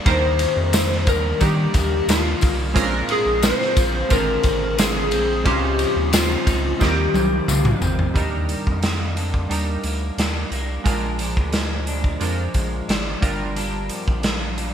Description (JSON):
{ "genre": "indie pop, bedroom pop", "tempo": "89 BPM", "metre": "4/4", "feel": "straight", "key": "Eb major", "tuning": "A4 = 440 Hz", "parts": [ { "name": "chorused retro synth keys", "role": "accompaniment", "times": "0.0-14.7 s", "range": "G3 to C5", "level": "-28 LUFS", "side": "right 4 dB", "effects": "none" }, { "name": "electric guitar through a small old amp", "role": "accompaniment", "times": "0.0-14.7 s", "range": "G2 to F4", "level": "-28 LUFS", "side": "left 1 dB", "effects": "lush chorus, vibrato effect" }, { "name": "electric slide guitar", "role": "melody", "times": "0.1-7.8 s", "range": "F4 to C5", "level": "-22 LUFS", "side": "left 2 dB", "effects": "analog chorus, ping-pong delay" }, { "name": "round analog bass", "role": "bass", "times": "0.1-14.7 s", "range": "G1 to Eb3", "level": "-24 LUFS", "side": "equal", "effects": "none" }, { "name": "raw garage drum kit", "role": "drums", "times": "0.1-14.7 s", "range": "hi-hat, kick drum, ride cymbal, snare drum, toms", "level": "-22 LUFS", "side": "equal", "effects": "gated reverb" }, { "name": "tambourine", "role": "percussion", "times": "0.1-8.0 s", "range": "none", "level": "-32 LUFS", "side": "left 7 dB", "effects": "none" } ], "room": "light reverb", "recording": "bright 1980s-style digital production", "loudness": "-18 LUFS", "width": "side -9 dB against mid", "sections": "0.0-8.2 A section; 8.2-14.7 B section", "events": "drum fill 6.8-8.2", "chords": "0.0 Ebmaj7; 2.8 Bb9; 5.5 Dbmaj9; 6.8 Eb69; 8.2 Ebmaj7; 10.9 Bb7; 13.2 Gm7" }